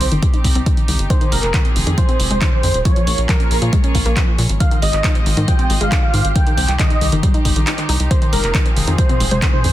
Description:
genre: uplifting trance.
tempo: 137 BPM.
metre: 4/4.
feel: straight.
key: F minor.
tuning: A4 = 439 Hz.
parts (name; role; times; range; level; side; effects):
dense compressed supersaw; melody; 0.0-9.7 s; Bb4 to G5; -23 LUFS; right 1 dB; sidechain pumping, low-pass filter, tape echo.
warm studio string section; sustained chords; 0.0-9.7 s; F3 to Eb5; -27 LUFS; equal; vintage 12-bit sampler grit, sidechain pumping, low-pass filter.
analog pluck; arpeggios; 0.0-9.7 s; Eb3 to Eb4; -23 LUFS; left 2 dB; chorus, sidechain pumping, tape echo.
tight sequencer bass; bass; 0.0-9.7 s; Eb1 to Bb2; -18 LUFS; equal; sidechain pumping.
punchy analog drum machine; drums; 0.0-9.7 s; handclaps, hi-hat, toms; -22 LUFS; right 1 dB; sidechain pumping on hats, sidechain pumping on toms.
electronic kick drum; drums; 0.2-9.5 s; none; -16 LUFS; equal; none.
room: little or no reverb.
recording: dense, heavily limited modern master.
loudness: -13 LUFS.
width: side -14 dB against mid.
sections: 0.0-9.7 A section.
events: filter sweep on synth arpeggio sound 0.0-9.7; kick drops out 7.7-8.1.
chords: 0.0 Cm; 1.1 Fm7; 2.9 Bbm7; 4.6 Fm7/Ab; 6.4 Cm; 8.1 Fm7.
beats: 0.23 0.66 | 1.10 1.54 1.98 2.42 | 2.85 3.29 3.73 4.17 | 4.61 5.04 5.48 5.92 | 6.36 6.79 7.23 7.67 | 8.11 8.55 8.98 9.42.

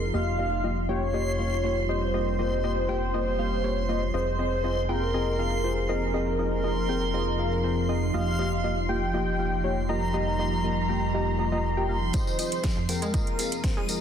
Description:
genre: progressive house.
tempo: 120 BPM.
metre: 4/4.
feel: straight.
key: F minor.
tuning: A4 = 436 Hz.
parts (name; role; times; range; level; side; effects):
wide unison lead; melody; 0.0-14.0 s; Bb4 to Bb5; -30 LUFS; equal; sidechain pumping, ping-pong delay.
evolving wavetable pad; sustained chords; 0.0-14.0 s; F2 to Ab4; -33 LUFS; equal; chorus, built-in reverb, sidechain pumping.
fat analog bass; bass; 0.0-12.1 s; F1; -30 LUFS; equal; tube saturation, sidechain pumping.
backwards swelling texture; texture; 0.0-14.0 s; C6 to Eb6; -37 LUFS; right 3 dB; built-in reverb, sidechain pumping.
deep mellow chord stab; stabs; 0.1-14.0 s; Bb3 to G5; -30 LUFS; left 1 dB; chorus, sidechain pumping, ping-pong delay.
analog pluck; arpeggios; 12.1-13.8 s; F2 to Ab3; -33 LUFS; equal; chorus, sidechain pumping, ping-pong delay.
electronic kick drum; drums; 12.1-13.7 s; none; -27 LUFS; equal; none.
house drum kit; drums; 12.1-14.0 s; hi-hat, snare drum; -34 LUFS; right 3 dB; sidechain pumping on hats, high-pass filter on hats, sidechain pumping on cymbals, high-pass filter on cymbals, high-pass filter on snare.
tambourine; percussion; 12.1-14.0 s; none; -36 LUFS; left 4 dB; none.
room: moderate lush hall reverb, RT60 1.9 s, digital ambience.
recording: dense, heavily limited modern master.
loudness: -24 LUFS.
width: side -8 dB against mid.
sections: 0.0-12.1 A section; 12.1-14.0 B section.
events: filter sweep on ambient pad 0.0-12.1, 12.1-14.0; build-up 12.1-14.0; filter sweep on synth pluck 12.1-14.0.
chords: 0.1 Ebadd9/F; 4.1 Fm7; 8.1 Ebadd9/F; 12.1 Fm7.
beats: | 0.14 0.64 1.14 1.64 | 2.14 2.64 3.14 3.64 | 4.14 4.64 5.14 5.64 | 6.14 6.64 7.14 7.64 | 8.14 8.64 9.14 9.64 | 10.14 10.64 11.14 11.64 | 12.14 12.64 13.14 13.64.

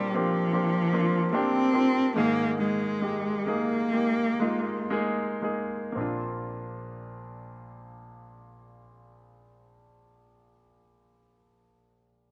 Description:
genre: pop.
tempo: 55-78 BPM.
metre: 4/4.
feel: straight.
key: Bb major.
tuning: A4 = 440 Hz.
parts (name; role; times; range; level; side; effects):
rich cello; melody; 0.0-4.9 s; F3 to C4; -28 LUFS; equal; none.
clear concert grand piano; accompaniment; 0.0-12.3 s; Bb1 to Ab4; -32 LUFS; equal; slapback echo.
room: little or no reverb.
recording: recorded outdoors, with no room sound.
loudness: -27 LUFS.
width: mono.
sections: 0.0-6.0 A section; 6.0-10.3 B section.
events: slowing down 0.0-6.0.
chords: 0.0 Bbadd9; 2.2 Absus2; 6.0 Bbadd9.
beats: 0.54 1.33 | 2.16 3.02 3.93 4.91 | 5.97 7.05 8.12 9.20.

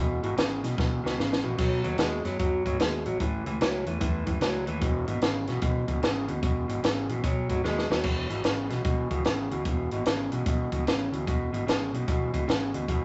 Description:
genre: electric blues shuffle.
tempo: 149 BPM.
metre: 4/4.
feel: swing 64% on 8ths.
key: E major.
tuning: A4 = 439 Hz.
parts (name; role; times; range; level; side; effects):
electric guitar through a small old amp; riff; 0.0-13.0 s; E2 to G#3; -32 LUFS; equal; none.
vintage muted fingered electric bass; bass; 0.0-13.0 s; E1 to G#2; -36 LUFS; equal; none.
compact cocktail drum kit; drums; 0.2-13.0 s; crash cymbal, hi-hat, kick drum, snare drum; -31 LUFS; equal; none.
room: moderate large studio reverb, RT60 0.8 s.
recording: vinyl crackle, nothing above 8.0 kHz.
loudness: -28 LUFS.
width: mono.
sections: 0.0-8.0 A section; 8.0-13.0 B section.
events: drum fill 0.8-1.6, 7.6-8.0.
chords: 0.0 E; 1.6 B; 3.2 A; 4.8 E; 7.2 B; 8.0 E.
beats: 0.38 0.78 1.19 | 1.59 1.99 2.40 2.80 | 3.21 3.61 4.01 4.42 | 4.82 5.22 5.63 6.03 | 6.43 6.83 7.24 7.64 | 8.04 8.45 8.85 9.25 | 9.66 10.06 10.46 10.87 | 11.27 11.67 12.08 12.48 | 12.88.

